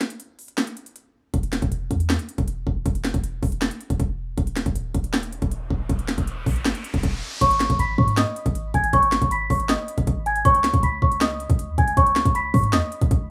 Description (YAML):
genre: hip hop, trap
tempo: 158 BPM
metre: 4/4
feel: half-time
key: G# minor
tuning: A4 = 440 Hz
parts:
  - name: trap drum kit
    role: drums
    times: 0.0-13.2 s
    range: crash cymbal, finger snaps, hi-hat, kick drum, snare drum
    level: -26 LUFS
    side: equal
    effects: none
  - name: clean 808-style bass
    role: bass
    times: 1.3-13.3 s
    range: D#1 to G#2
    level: -28 LUFS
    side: equal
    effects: none
  - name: riser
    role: sound effects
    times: 5.1-7.4 s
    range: none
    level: -39 LUFS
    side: equal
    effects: none
  - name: small celesta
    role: melody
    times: 7.4-13.3 s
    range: C#5 to B6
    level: -23 LUFS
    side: equal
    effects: low-pass filter, digital delay
room: light reverb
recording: rough home demo mix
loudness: -22 LUFS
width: mono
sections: 0.0-7.4 A section; 7.4-13.3 B section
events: break 0.0-2.9; riser 5.1-7.4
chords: 0.0 N.C.; 7.4 G#m; 10.5 N.C.